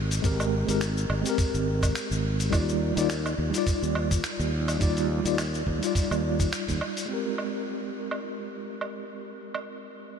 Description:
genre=sunset chillout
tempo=105 BPM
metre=4/4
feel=swing 56% on 16ths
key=Ab lydian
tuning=A4 = 440 Hz
part: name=tine electric piano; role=accompaniment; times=0.0-10.2 s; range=G3 to D5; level=-29 LUFS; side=moving between left 4 dB and right 2 dB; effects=overdrive, fast stereo tremolo, auto-pan, diffuse ambient delay
part: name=sustaining fretless electric bass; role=bass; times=0.0-6.8 s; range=Ab1 to Eb2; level=-28 LUFS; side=equal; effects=none
part: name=dusty soul sampler-style drum kit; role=drums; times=0.1-9.6 s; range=finger snaps, hi-hat, shaker, woodblock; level=-33 LUFS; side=right 1 dB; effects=low-pass filter on hats, small room reverb, low-pass filter on perc, low-pass filter on snare
part: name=electronic kick drum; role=drums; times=0.2-6.8 s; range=none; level=-26 LUFS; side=equal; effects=small room reverb
room=moderate huge ambient reverb, RT60 7.7 s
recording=dreamy mix soaked in reverb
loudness=-25 LUFS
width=side -7 dB against mid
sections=0.0-7.1 A section; 7.1-10.2 B section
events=filter sweep on drum 7.1-10.2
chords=0.0 Abmaj9; 2.5 Ebmaj9; 7.1 Abmaj9

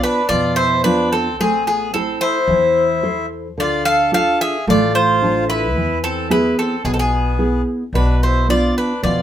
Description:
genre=greek folk, Greek bouzouki band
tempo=110 BPM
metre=4/4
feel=straight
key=A harmonic minor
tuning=A4 = 439 Hz
part: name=Greek bouzouki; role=melody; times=0.0-9.2 s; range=G#4 to F5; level=-18 LUFS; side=equal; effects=none
part: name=accordion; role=second line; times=0.0-9.2 s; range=B3 to A4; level=-24 LUFS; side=left 1 dB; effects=none
part: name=nylon-string guitar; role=accompaniment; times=0.0-9.2 s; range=B2 to C5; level=-20 LUFS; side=right 1 dB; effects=none
part: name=upright bass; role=bass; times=0.3-9.2 s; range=A1 to F2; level=-22 LUFS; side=equal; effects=none
room=moderate small room reverb, RT60 0.5 s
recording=minimal, uncompressed stereo recording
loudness=-15 LUFS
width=side -10 dB against mid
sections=0.0-9.2 A section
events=none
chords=0.0 Bdim; 1.4 Am; 3.6 Dm; 5.8 E; 7.9 Bdim

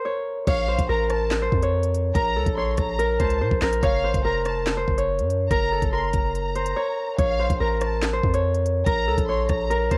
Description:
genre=hip hop, drill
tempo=143 BPM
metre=4/4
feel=half-time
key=Bb harmonic minor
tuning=A4 = 440 Hz
part: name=Celtic harp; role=melody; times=0.0-10.0 s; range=A4 to Db5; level=-26 LUFS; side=equal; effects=cassette tape
part: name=warm studio violin section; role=second line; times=0.5-10.0 s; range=F5 to C6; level=-34 LUFS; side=equal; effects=cassette tape, analog delay
part: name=long sustained 808-style bass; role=bass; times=0.5-10.0 s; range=F1 to Bb2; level=-28 LUFS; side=equal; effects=none
part: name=drill drum kit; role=drums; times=0.5-10.0 s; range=crash cymbal, handclaps, hi-hat, kick drum, rim click, snare drum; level=-29 LUFS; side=equal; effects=cassette tape
room=little or no reverb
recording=home recording on cassette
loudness=-23 LUFS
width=mono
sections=0.5-10.0 A section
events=stop 0.0-0.5; silent gap 6.8-7.2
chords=0.5 Bbm; 3.8 Gbmaj7; 7.2 Bbm

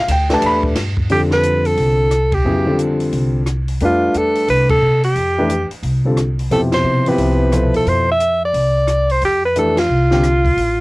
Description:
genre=modal jazz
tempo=177 BPM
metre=4/4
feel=swing 64% on 8ths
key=F lydian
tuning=A4 = 440 Hz
part: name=dark grand piano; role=accompaniment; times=0.0-10.2 s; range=B2 to B5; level=-18 LUFS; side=left 1 dB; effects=cassette tape
part: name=upright bass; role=bass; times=0.1-10.8 s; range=A1 to C3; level=-18 LUFS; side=equal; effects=transformer saturation
part: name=compact cocktail drum kit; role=drums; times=0.1-10.7 s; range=hi-hat, kick drum, ride cymbal, rim click, snare drum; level=-26 LUFS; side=equal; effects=none
part: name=clear alto saxophone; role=melody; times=1.1-10.8 s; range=F4 to E5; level=-16 LUFS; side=equal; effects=none
room=light reverb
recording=home recording on cassette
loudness=-13 LUFS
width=side -22 dB against mid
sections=0.0-1.1 A section; 1.1-10.8 B section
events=band accent 2.3, 4.7, 6.7, 9.7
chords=0.0 Fmaj9 (rootless); 1.1 Fmaj9

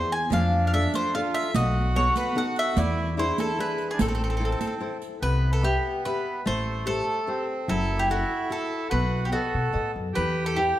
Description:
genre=italian folk, Italian serenade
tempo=146 BPM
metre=3/4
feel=straight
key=A harmonic minor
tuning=A4 = 439 Hz
part: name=bowl-back mandolin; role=melody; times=0.0-10.8 s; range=F#4 to G#5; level=-27 LUFS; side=equal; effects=none
part: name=nylon-string guitar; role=accompaniment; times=0.0-10.8 s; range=B2 to E5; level=-30 LUFS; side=left 3 dB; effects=none
part: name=accordion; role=second line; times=0.3-10.8 s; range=A3 to A4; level=-31 LUFS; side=right 3 dB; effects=none
part: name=upright bass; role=bass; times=0.3-10.7 s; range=F#1 to B2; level=-27 LUFS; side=equal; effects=none
part: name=riq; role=percussion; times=0.3-5.1 s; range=none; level=-31 LUFS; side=right 4 dB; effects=none
room=wet recital hall reverb, RT60 1.6 s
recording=none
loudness=-23 LUFS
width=side -13 dB against mid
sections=0.0-5.2 A section; 5.2-10.8 B section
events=none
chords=0.3 F6; 1.5 B7; 2.8 E7; 4.0 Am; 5.2 Cmaj7; 6.5 Am7; 7.7 F#m7; 8.9 B7; 10.2 Em

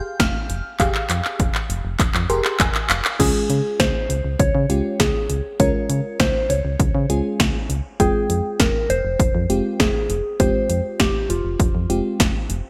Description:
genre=synth-pop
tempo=100 BPM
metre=4/4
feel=straight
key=unclear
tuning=A4 = 440 Hz
part: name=soft synth bell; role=melody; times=0.0-12.5 s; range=F4 to G6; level=-26 LUFS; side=equal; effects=chorus, phaser, delay
part: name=mellow FM electric piano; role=accompaniment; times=0.0-12.4 s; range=Ab3 to C6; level=-27 LUFS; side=equal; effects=chorus
part: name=solid FM bass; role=bass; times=0.2-12.6 s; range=F1 to Db3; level=-26 LUFS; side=equal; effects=none
part: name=house drum kit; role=drums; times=0.2-12.6 s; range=crash cymbal, handclaps, hi-hat, kick drum, snare drum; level=-22 LUFS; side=equal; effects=gated reverb
room=light reverb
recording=bright 1980s-style digital production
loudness=-20 LUFS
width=mono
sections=0.0-3.2 A section; 3.2-12.7 B section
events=drum fill 0.8-3.2; FM electric piano fill 2.0-3.2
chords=0.0 Fmadd9; 3.2 Db; 8.0 Fmadd9

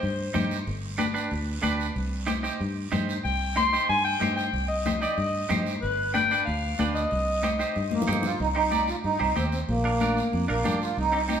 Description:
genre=latin, cumbia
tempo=186 BPM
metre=4/4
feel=straight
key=C harmonic minor, C minor from 8.4 s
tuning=A4 = 442 Hz
part: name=bright clarinet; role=second line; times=0.0-0.5, 3.2-8.0 s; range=B4 to C6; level=-26 LUFS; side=left 2 dB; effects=none
part: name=clean electric guitar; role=accompaniment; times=0.0-11.4 s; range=C4 to D5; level=-31 LUFS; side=right 4 dB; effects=spring reverb
part: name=fingered electric bass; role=bass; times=0.0-11.4 s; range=G1 to G2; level=-30 LUFS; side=equal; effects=none
part: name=congas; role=percussion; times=0.0-11.4 s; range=none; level=-32 LUFS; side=left 4 dB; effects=none
part: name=guiro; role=percussion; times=0.0-11.4 s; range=none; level=-40 LUFS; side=right 4 dB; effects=none
part: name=accordion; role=melody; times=7.9-11.4 s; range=Bb3 to F4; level=-26 LUFS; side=right 2 dB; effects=light tremolo tuning
room=wet stone room reverb, RT60 1.3 s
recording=band playing live in one room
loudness=-24 LUFS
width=side -8 dB against mid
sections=0.0-8.4 A section; 8.4-11.4 B section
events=clarinet solo 0.0-8.4; drum fill 7.9-8.4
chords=0.0 Cm; 0.7 G; 2.0 Cm; 5.8 G7; 7.1 Cm; 9.7 Bb

